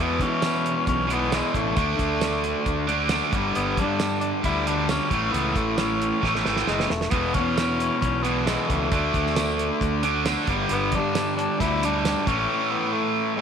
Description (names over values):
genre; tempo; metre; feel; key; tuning
classic rock; 134 BPM; 4/4; straight; unclear; A4 = 441 Hz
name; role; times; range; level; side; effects
raspy tenor saxophone; melody; 0.0-13.4 s; G#3 to E4; -28 LUFS; left 2 dB; slapback echo
cranked stack guitar; riff; 0.0-13.4 s; E2 to D4; -26 LUFS; right 9 dB; overdrive
distorted electric guitar; riff; 0.0-13.4 s; E2 to D4; -28 LUFS; left 12 dB; overdrive
fuzz fingered electric bass; bass; 0.0-12.5 s; E1 to E3; -29 LUFS; left 1 dB; overdrive
damped 70s drum kit; drums; 0.2-12.4 s; hi-hat, kick drum, snare drum, tambourine; -28 LUFS; right 2 dB; none
room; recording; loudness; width
moderate echo chamber reverb, RT60 1.8 s, studio reverb; 1960s-style stereo with parts hard left and right; -21 LUFS; side -7 dB against mid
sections
0.0-13.4 A section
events
drum fill 6.2-7.1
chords
0.0 E5; 1.8 D5; 3.3 G5; 5.1 A; 7.1 E5; 8.9 D5; 10.5 G5; 12.3 A